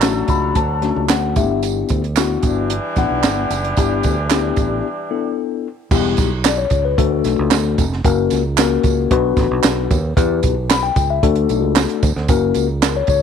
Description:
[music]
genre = uptempo 1960s-style soul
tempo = 113 BPM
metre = 4/4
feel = straight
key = unclear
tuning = A4 = 444 Hz
[part]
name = dark horn section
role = second line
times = 0.0-5.3 s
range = E3 to A4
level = -24 LUFS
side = right 1 dB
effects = none
[part]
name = mellow tine electric piano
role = accompaniment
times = 0.0-13.2 s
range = G3 to B5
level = -18 LUFS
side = left 10 dB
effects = slow stereo tremolo
[part]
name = fingered electric bass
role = bass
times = 0.0-13.2 s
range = E1 to E2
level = -21 LUFS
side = right 2 dB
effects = none
[part]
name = compact cocktail drum kit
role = drums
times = 0.0-13.2 s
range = crash cymbal, hi-hat, kick drum, snare drum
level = -18 LUFS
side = right 2 dB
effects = none
[part]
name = handclaps and tambourine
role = percussion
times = 0.0-13.2 s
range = none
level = -25 LUFS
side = right 14 dB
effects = none
[sound]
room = moderate spring reverb, RT60 1.7 s, small room ambience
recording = 1960s-style stereo with parts hard left and right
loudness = -15 LUFS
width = side -7 dB against mid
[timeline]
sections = 0.0-5.9 A section; 5.9-13.2 B section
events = tine electric piano fill 0.0-1.6; break 4.8-5.9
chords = 0.0 Dmaj7; 1.4 G6; 5.9 Em; 7.0 D; 8.0 F#; 9.1 Bm; 10.2 Em; 11.2 D; 12.3 F#

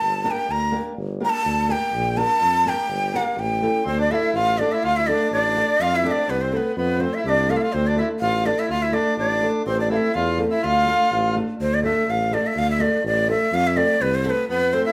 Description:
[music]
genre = balkan folk, Balkan wedding band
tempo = 124 BPM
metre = 2/4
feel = straight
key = G dorian sharp4, D minor from 3.9 s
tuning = A4 = 445 Hz
[part]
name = breathy bright ney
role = melody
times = 0.0-14.9 s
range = B4 to Bb5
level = -24 LUFS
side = equal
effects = none
[part]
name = warm tuba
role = bass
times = 0.0-14.8 s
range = G1 to F2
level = -28 LUFS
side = equal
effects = none
[part]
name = flamenco guitar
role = accompaniment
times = 0.2-14.9 s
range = A3 to Bb4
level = -29 LUFS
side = equal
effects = none
[part]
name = accordion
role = second line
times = 3.8-11.3, 14.5-14.9 s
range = B3 to F4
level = -28 LUFS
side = equal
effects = none
[sound]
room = wet studio reverb, RT60 0.7 s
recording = band playing live in one room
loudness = -21 LUFS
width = mono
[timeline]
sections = 0.0-3.9 A section; 3.9-11.6 B section; 11.6-14.9 B section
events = ney solo 0.0-3.9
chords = 0.0 Gm; 1.9 Bb; 2.9 Gm; 3.4 A7; 3.9 Dm; 5.8 F; 7.7 Dm; 9.7 Am; 10.6 Dm; 13.5 F

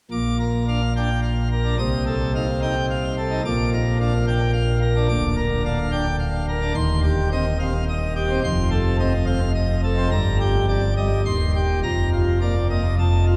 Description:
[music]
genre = classical, organ toccata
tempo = 108 BPM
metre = 3/4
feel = straight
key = Bb major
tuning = A4 = 441 Hz
[part]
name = pipe organ, plenum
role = solo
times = 0.1-13.4 s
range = D1 to Eb6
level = -21 LUFS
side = equal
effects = none
[sound]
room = wet cathedral reverb, RT60 4.6 s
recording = heard from further back in the room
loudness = -22 LUFS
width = mono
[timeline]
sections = 0.1-13.4 A section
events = none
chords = 0.1 Bb; 1.8 F7/C; 3.4 Bb; 5.1 Bb/D; 6.8 Cm/Eb; 8.4 F7; 10.1 Gm; 11.2 Cm/Eb; 11.8 Bb/F

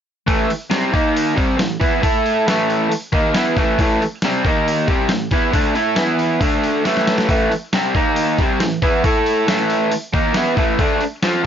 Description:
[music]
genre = garage rock duo or trio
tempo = 137 BPM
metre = 4/4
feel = straight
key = unclear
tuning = A4 = 440 Hz
[part]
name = raw garage guitar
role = riff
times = 0.3-11.5 s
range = A2 to A4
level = -16 LUFS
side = equal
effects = overdrive
[part]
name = dusty soul sampler-style drum kit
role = drums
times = 0.3-11.3 s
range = hi-hat, kick drum, snare drum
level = -20 LUFS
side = equal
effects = none
[sound]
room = light reverb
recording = nothing above 7.5 kHz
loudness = -15 LUFS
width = side -8 dB against mid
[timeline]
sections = 0.3-11.5 A section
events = drum fill 6.9-7.3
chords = 0.3 A5; 0.9 D#5; 1.4 A5; 4.4 D#5; 4.9 A5; 6.0 E5; 6.4 D5; 6.9 A5; 8.0 D#5; 8.4 A5; 10.8 D5

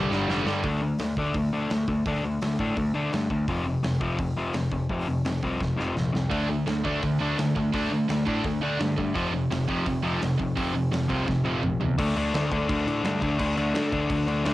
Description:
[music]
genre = punk rock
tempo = 169 BPM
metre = 4/4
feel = straight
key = D minor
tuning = A4 = 440 Hz
[part]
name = overdriven electric guitar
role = riff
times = 0.0-14.5 s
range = F2 to D4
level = -26 LUFS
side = left 2 dB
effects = cassette tape
[part]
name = tight distorted guitar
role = riff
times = 0.0-0.6, 6.3-12.0 s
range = F2 to D4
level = -30 LUFS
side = right 7 dB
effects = distortion, cassette tape
[part]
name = growling picked electric bass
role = bass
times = 0.0-14.5 s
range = F1 to D3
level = -30 LUFS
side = right 1 dB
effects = overdrive
[part]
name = big rock drum kit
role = drums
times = 0.1-14.5 s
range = crash cymbal, hi-hat, kick drum, snare drum, toms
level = -34 LUFS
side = right 1 dB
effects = cassette tape
[sound]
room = little or no reverb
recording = home recording on cassette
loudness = -24 LUFS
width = side -16 dB against mid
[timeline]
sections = 0.6-12.0 A section; 12.0-14.5 B section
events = drum fill 0.0-0.6, 5.6-6.3, 11.3-12.0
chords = 0.0 G5; 0.6 D5; 3.5 F5; 6.3 D5; 9.2 F5; 12.0 D5

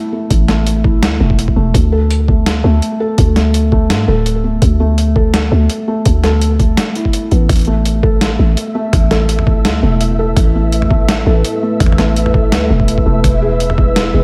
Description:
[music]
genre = half-time drum and bass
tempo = 167 BPM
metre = 4/4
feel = swing 54% on 16ths, half-time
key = unclear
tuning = A4 = 439 Hz
[part]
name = felt-muted upright piano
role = arpeggios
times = 0.0-14.2 s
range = G#3 to A4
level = -20 LUFS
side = equal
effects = delay
[part]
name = growling 808-style bass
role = bass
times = 0.3-14.2 s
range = D1 to G#2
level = -16 LUFS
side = equal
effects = tube saturation
[part]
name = boom bap sampler-style drum kit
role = drums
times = 0.3-14.0 s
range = hi-hat, snare drum, toms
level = -21 LUFS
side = equal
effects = overdrive
[part]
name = electronic kick drum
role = drums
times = 0.3-13.9 s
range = none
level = -16 LUFS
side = equal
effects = overdrive
[part]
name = deep dark ambient pad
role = sustained chords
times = 9.2-14.2 s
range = A3 to E5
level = -23 LUFS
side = equal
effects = chorus, built-in reverb, sidechain pumping
[part]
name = flickering grainy texture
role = texture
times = 8.3-14.2 s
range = E5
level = -27 LUFS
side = equal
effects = built-in reverb, subtle chorus
[sound]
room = light reverb, digital ambience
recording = none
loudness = -13 LUFS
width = mono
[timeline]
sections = 0.0-14.2 A section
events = none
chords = 0.0 A5; 1.7 D5; 7.5 A5; 13.2 E

